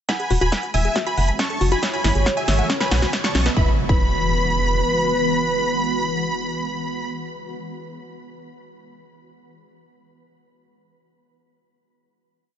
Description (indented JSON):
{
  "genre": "uplifting trance",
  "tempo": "138 BPM",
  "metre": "4/4",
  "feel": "straight",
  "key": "E major",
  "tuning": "A4 = 438 Hz",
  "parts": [
    { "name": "dense compressed supersaw", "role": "melody", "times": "0.1-7.1 s", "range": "E5 to C#6", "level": "-25 LUFS", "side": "right 1 dB", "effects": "sidechain pumping, digital delay" },
    { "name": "warm velvety synth lead", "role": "second line", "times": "0.1-7.1 s", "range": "B4 to F#5", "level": "-28 LUFS", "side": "left 1 dB", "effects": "chorus, digital delay" },
    { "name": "wide unison pluck", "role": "second line", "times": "0.1-7.1 s", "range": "G#5 to C#6", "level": "-33 LUFS", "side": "equal", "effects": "none" },
    { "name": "shimmering ambient pad", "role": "sustained chords", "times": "0.8-6.8 s", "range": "E3 to F#4", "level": "-28 LUFS", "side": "right 1 dB", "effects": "chorus, built-in reverb, phaser, sidechain pumping" },
    { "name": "wide unison pluck", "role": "arpeggios", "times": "0.1-4.0 s", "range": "C#4 to B5", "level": "-29 LUFS", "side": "left 2 dB", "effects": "sidechain pumping, digital delay" },
    { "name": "big-room dance drum kit", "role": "drums", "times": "0.1-3.5 s", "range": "hi-hat, snare drum", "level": "-26 LUFS", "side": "equal", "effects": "none" },
    { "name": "electronic kick drum", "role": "drums", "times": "0.1-4.0 s", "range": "none", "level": "-21 LUFS", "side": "equal", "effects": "high-pass filter on kick" },
    { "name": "riser and impact", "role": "sound effects", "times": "1.3-6.8 s", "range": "none", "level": "-30 LUFS", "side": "right 1 dB", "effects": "none" },
    { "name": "tight sequencer bass", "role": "bass", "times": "0.3-4.8 s", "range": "E1 to B1", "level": "-21 LUFS", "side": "equal", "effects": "sidechain pumping" }
  ],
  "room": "light reverb",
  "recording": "nothing above 7.9 kHz",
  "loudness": "-18 LUFS",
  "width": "side -9 dB against mid",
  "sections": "0.1-3.6 build; 3.6-7.0 final chord",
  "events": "build-up 0.1-3.6; drum fill 0.1-3.6; filter sweep on synth arpeggio sound 0.1-3.6; riser 1.3-3.6",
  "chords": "0.1 Eadd9; 1.0 F#m; 1.8 Eadd9/G#; 2.7 Bsus2; 3.6 Eadd9",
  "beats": "| 0.09 0.52 0.96 1.39 | 1.83 2.26 2.70 3.13 | 3.57 4.00 4.44 4.87 | 5.30 5.74 6.17 6.61"
}